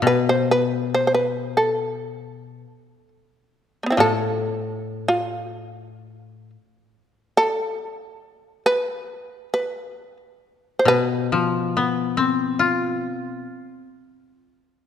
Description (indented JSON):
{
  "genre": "japanese traditional, Japanese chamber music",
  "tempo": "64-73 BPM",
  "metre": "2/4",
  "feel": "rubato",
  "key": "unclear",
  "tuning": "A4 = 441 Hz",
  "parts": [
    { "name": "shamisen", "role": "melody", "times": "0.0-14.9 s", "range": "A3 to C5", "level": "-20 LUFS", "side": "right 1 dB", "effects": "none" },
    { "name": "koto", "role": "accompaniment", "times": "0.0-6.5, 10.9-14.3 s", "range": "A2 to F4", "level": "-23 LUFS", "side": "left 5 dB", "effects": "none" }
  ],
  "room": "moderate concert hall reverb, RT60 2.0 s",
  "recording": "none",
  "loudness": "-20 LUFS",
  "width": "side -9 dB against mid",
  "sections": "0.0-3.6 A section; 3.6-14.9 B section",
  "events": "none",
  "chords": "none"
}